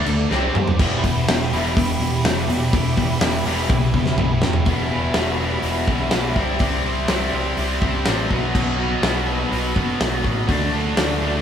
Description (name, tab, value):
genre	hard rock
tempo	124 BPM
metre	4/4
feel	straight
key	E minor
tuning	A4 = 440 Hz
part	hollow soft pad	sustained chords	0.0-11.4 s	F#4 to D6	-30 LUFS	right 1 dB	ensemble chorus
part	high-gain distorted guitar	riff	0.0-11.4 s	E2 to D4	-27 LUFS	right 5 dB	distortion
part	overdriven semi-hollow guitar	riff	0.0-11.4 s	E2 to D4	-25 LUFS	left 5 dB	none
part	tight distorted guitar	riff	0.0-11.4 s	B2 to A4	-27 LUFS	right 1 dB	distortion
part	picked electric bass	bass	0.1-11.4 s	E1 to F#2	-25 LUFS	equal	none
part	big rock drum kit	drums	0.1-11.1 s	crash cymbal, hi-hat, kick drum, snare drum, toms	-22 LUFS	equal	none
room	moderate studio ambience, RT60 0.5 s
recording	band playing live in one room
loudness	-18 LUFS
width	side -8 dB against mid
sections	0.8-4.7 A section; 4.7-11.4 B section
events	drum fill 0.3-0.8, 3.7-4.7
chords	0.3 C5; 0.8 Em; 6.4 C; 8.3 B; 10.5 D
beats	0.30 | 0.79 1.27 1.76 2.24 | 2.73 3.21 3.69 4.18 | 4.66 5.15 5.63 6.12 | 6.60 7.09 7.57 8.06 | 8.54 9.03 9.51 10.00 | 10.48 10.97